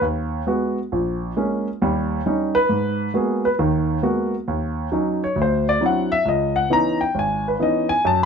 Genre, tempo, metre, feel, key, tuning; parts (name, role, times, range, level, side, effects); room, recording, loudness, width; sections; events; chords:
solo jazz; 135 BPM; 4/4; swing 65% on 8ths; G# minor; A4 = 440 Hz
dark baby grand piano; solo; 0.0-8.3 s; G#1 to A#5; -18 LUFS; equal
moderate club reverb, RT60 0.5 s; -19 LUFS; side -6 dB against mid
0.0-2.7 A section; 2.7-8.3 A section
grand piano solo 0.0-8.3
0.0 G#m7; 0.9 A#m7; 1.8 D#7; 2.7 G#m9; 4.5 D#m7; 5.4 D9; 6.3 C#m9